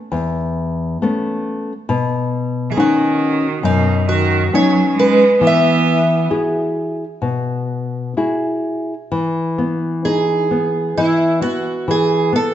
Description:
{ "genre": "fado-style ballad", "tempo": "66 BPM", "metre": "4/4", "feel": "rubato", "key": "E major", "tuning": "A4 = 440 Hz", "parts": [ { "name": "nylon-string guitar", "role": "accompaniment", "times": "0.1-12.5 s", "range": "E2 to G#4", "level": "-17 LUFS", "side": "left 2 dB", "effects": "none" }, { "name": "fingerpicked twelve-string acoustic guitar", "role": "melody", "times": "2.7-12.5 s", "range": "D#4 to E5", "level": "-17 LUFS", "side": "right 1 dB", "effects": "none" }, { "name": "clear cello", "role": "second line", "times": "2.7-6.3 s", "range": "B2 to B3", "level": "-18 LUFS", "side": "right 5 dB", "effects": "slapback echo" } ], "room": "moderate recital hall reverb, RT60 1.7 s", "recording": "nothing above 8.0 kHz", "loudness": "-15 LUFS", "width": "side -11 dB against mid", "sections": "0.0-9.1 A section; 9.1-12.5 A section", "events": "none", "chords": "0.0 Aadd9; 1.9 Badd9; 5.4 Eadd9; 9.1 Emaj7" }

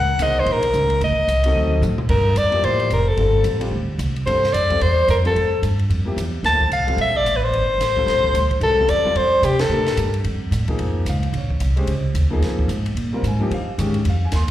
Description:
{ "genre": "modal jazz", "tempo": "221 BPM", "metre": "4/4", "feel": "swing 60% on 8ths", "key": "G dorian, Bb dorian from 10.8 s", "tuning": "A4 = 444 Hz", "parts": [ { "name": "clear soprano saxophone", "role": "melody", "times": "0.0-10.0 s", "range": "G4 to A5", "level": "-18 LUFS", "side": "left 1 dB", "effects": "plate reverb, slapback echo" }, { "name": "upright bass", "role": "bass", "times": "0.0-14.5 s", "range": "F1 to C3", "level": "-20 LUFS", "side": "equal", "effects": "none" }, { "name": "clear concert grand piano", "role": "accompaniment", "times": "0.2-14.5 s", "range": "Eb3 to C6", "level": "-26 LUFS", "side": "left 1 dB", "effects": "plate reverb, slapback echo" }, { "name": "compact cocktail drum kit", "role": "drums", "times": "0.2-14.5 s", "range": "crash cymbal, hi-hat, kick drum, ride cymbal, snare drum, toms", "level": "-29 LUFS", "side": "equal", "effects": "none" } ], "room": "moderate club reverb, RT60 0.7 s", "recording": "live gig heard through the venue's PA, recital hall reverb", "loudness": "-17 LUFS", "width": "side -13 dB against mid", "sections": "0.0-2.1 A section; 2.1-10.8 B section; 10.8-14.5 C section", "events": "drum fill 1.6-2.1; band accent 9.6", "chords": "0.0 Gb; 1.0 D7b9; 2.1 Gm11; 4.3 F; 6.4 Gm11; 8.6 F; 10.8 Bbm9; 13.0 Fm" }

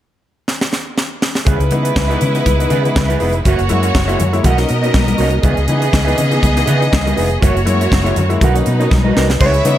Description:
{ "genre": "disco", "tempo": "121 BPM", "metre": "4/4", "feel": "straight", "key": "C# dorian", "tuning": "A4 = 440 Hz", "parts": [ { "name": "tight funk drum kit", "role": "drums", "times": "0.5-9.8 s", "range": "crash cymbal, hi-hat, kick drum, snare drum", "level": "-17 LUFS", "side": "equal", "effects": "gated reverb" }, { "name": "clear studio string section", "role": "second line", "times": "1.5-9.8 s", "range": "F#3 to E5", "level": "-19 LUFS", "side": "equal", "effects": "none" }, { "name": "mellow electric guitar", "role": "accompaniment", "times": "1.5-9.7 s", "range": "F#4 to F#5", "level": "-22 LUFS", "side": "right 7 dB", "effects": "spring reverb" }, { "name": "warm baby grand piano", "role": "accompaniment", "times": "1.5-9.8 s", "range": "B2 to E4", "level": "-21 LUFS", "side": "left 5 dB", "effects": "none" }, { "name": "vintage muted fingered electric bass", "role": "bass", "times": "1.5-9.8 s", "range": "E#1 to C#3", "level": "-16 LUFS", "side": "equal", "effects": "none" }, { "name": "congas", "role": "percussion", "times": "1.5-9.8 s", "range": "none", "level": "-23 LUFS", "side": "left 4 dB", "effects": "none" }, { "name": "mellow electric guitar", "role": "melody", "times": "9.4-9.8 s", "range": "C#5", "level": "-15 LUFS", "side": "left 1 dB", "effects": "none" } ], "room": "studio ambience", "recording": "none", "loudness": "-12 LUFS", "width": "side -12 dB against mid", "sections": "0.0-1.5 A section; 1.5-9.4 B section", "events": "drum fill 0.5-1.5, 8.9-9.4", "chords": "0.0 N.C.; 1.5 C#m7; 3.5 F#7; 4.4 Bmaj7; 5.4 C#m7; 7.4 F#7; 8.4 Bmaj7" }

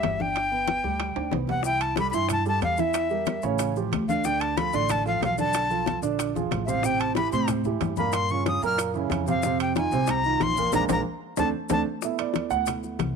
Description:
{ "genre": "Afro-Cuban jazz", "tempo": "185 BPM", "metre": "4/4", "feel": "straight", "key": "C major", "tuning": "A4 = 440 Hz", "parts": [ { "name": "breathy bright jazz flute", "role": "melody", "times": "0.0-11.8 s", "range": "E5 to F6", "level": "-27 LUFS", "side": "left 4 dB", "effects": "none" }, { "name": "dark grand piano", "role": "accompaniment", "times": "0.0-13.2 s", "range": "Bb2 to F#5", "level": "-28 LUFS", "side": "right 11 dB", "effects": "none" }, { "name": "upright bass", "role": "bass", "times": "0.0-13.2 s", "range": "G1 to A2", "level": "-31 LUFS", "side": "left 1 dB", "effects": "none" }, { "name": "bongos", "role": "percussion", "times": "0.0-13.2 s", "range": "none", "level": "-33 LUFS", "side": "left 14 dB", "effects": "none" }, { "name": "congas", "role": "percussion", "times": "0.0-13.2 s", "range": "none", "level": "-33 LUFS", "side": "left 12 dB", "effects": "none" }, { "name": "timbales", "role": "percussion", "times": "0.0-13.2 s", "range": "none", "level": "-34 LUFS", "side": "right 13 dB", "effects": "none" }, { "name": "maracas", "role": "percussion", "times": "1.6-13.2 s", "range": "none", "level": "-39 LUFS", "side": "left 17 dB", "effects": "none" } ], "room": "light reverb", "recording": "1960s-style stereo with parts hard left and right", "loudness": "-23 LUFS", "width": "side -6 dB against mid", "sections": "0.0-1.7 A section; 1.7-12.0 B section; 12.0-13.2 C section", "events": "drum fill 1.2-1.7, 6.4-6.8, 11.1-12.0; band accent 10.7-12.0; grand piano solo 12.0-13.2", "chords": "0.0 G; 1.7 C6; 3.0 Edim; 3.6 Aaug7; 4.2 Dm; 5.5 Bm7b5; 6.2 Bb9; 6.8 Am7; 8.1 Gm7b5; 8.8 F#7; 9.4 Fm7; 10.7 Bb7; 11.4 D5; 12.0 Cmaj13" }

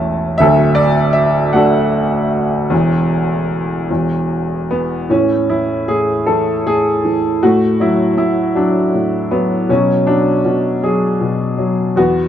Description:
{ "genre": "classical, lyrical solo piano", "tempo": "52 BPM (dotted quarters)", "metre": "6/8", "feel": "rubato", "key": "A major", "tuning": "A4 = 440 Hz", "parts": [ { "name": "clear grand piano", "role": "solo", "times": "0.0-12.3 s", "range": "D1 to C#6", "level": "-13 LUFS", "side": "equal", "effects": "none" } ], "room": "light reverb", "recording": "dark, warm production", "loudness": "-13 LUFS", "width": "side -10 dB against mid", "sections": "0.0-5.1 A section; 5.1-12.3 B section", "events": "none", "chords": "0.4 D; 2.7 A5/E; 5.1 A5; 7.4 D/A; 9.7 Bm" }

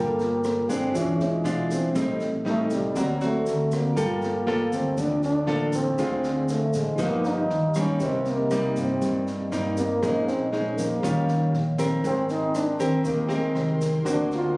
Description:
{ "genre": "bossa nova", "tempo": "119 BPM", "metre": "4/4", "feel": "straight", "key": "G minor", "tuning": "A4 = 444 Hz", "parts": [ { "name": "growling trombone", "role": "melody", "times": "0.0-14.6 s", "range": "F#3 to F4", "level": "-26 LUFS", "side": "equal", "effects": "none" }, { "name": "nylon-string guitar", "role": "accompaniment", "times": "0.0-14.6 s", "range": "G2 to Bb4", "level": "-26 LUFS", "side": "equal", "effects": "none" }, { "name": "tine electric piano", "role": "accompaniment", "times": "0.0-14.6 s", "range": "C4 to Bb5", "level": "-32 LUFS", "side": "equal", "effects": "medium stereo tremolo" }, { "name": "hollow-body short-scale fingered electric bass", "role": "bass", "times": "0.0-14.6 s", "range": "E1 to G2", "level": "-32 LUFS", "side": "equal", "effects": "none" }, { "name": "open jazz drum kit", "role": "drums", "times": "0.2-14.4 s", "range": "kick drum, rim click, snare drum", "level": "-38 LUFS", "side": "equal", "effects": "none" }, { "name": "egg shaker", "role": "percussion", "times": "0.2-14.6 s", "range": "none", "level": "-45 LUFS", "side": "equal", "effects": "none" }, { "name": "phased analog pad", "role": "sustained chords", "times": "12.0-14.6 s", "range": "Bb4 to C6", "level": "-34 LUFS", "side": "equal", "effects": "phaser, chorus" } ], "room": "light reverb", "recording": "recorded on a phone in the room, club reverb, compression", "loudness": "-22 LUFS", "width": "side -25 dB against mid", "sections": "0.0-4.0 A section; 4.0-14.6 A section", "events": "none", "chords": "0.0 Gm9; 0.9 E7b9; 1.9 Am7b5; 3.0 D7b13; 4.0 Gm9; 6.0 Dm7b5; 7.0 G7alt; 8.0 Cm7; 10.0 Bbm11; 11.0 Eb9; 12.0 Abmaj9; 14.1 Daug7" }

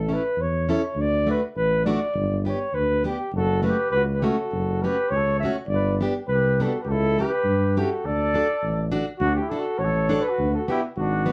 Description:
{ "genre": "alpine folk, alpine dance band", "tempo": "102 BPM", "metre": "2/4", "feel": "straight", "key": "D major", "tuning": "A4 = 440 Hz", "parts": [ { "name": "mellow flugelhorn", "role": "melody", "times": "0.0-11.3 s", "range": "F#4 to E5", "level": "-27 LUFS", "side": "equal", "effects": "none" }, { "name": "mellow tuba", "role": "bass", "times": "0.0-11.3 s", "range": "F#1 to G2", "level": "-28 LUFS", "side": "equal", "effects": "none" }, { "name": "picked plugged-in steel-string acoustic guitar", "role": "accompaniment", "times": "0.1-11.3 s", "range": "A3 to A4", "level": "-29 LUFS", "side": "equal", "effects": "none" }, { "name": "mellow trumpet", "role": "second line", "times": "3.4-11.3 s", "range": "D4 to C#5", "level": "-33 LUFS", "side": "equal", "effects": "none" } ], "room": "moderate studio reverb, RT60 0.5 s", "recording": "heard from further back in the room", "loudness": "-23 LUFS", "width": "mono", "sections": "0.0-9.2 A section; 9.2-11.3 B section", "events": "none", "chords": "0.0 A; 1.0 D; 2.1 G; 3.3 F#m; 5.7 G; 6.9 C#m7b5; 8.0 D; 10.4 Bm/D" }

